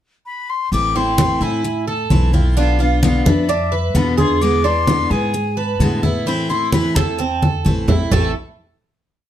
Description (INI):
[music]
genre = latin, Cuban son and guajira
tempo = 130 BPM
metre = 4/4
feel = straight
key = A harmonic minor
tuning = A4 = 440 Hz
[part]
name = silver concert flute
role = melody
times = 0.3-8.3 s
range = E5 to D6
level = -23 LUFS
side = left 3 dB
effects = none
[part]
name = picked steel-string acoustic guitar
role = accompaniment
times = 0.7-8.3 s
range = A2 to F4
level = -21 LUFS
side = left 3 dB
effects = none
[part]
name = upright bass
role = bass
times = 0.7-8.3 s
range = A1 to A2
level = -20 LUFS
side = equal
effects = none
[part]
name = congas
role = percussion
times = 0.7-8.2 s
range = none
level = -18 LUFS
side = equal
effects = none
[part]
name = Cuban tres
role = arpeggios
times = 1.0-8.3 s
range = A3 to B4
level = -22 LUFS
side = right 5 dB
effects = none
[sound]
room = moderate studio reverb, RT60 0.7 s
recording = none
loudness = -15 LUFS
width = side -11 dB against mid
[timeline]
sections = 0.0-0.7 pickup bar; 0.7-8.1 A section; 8.1-9.3 final chord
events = drum fill 7.4-8.1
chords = 0.0 N.C.; 0.7 Am; 2.6 Bdim; 4.4 E7; 6.3 Am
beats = 0.26 | 0.72 1.18 1.64 2.10 | 2.56 3.02 3.49 3.95 | 4.41 4.87 5.34 5.80 | 6.26 6.72 7.19 7.65 | 8.12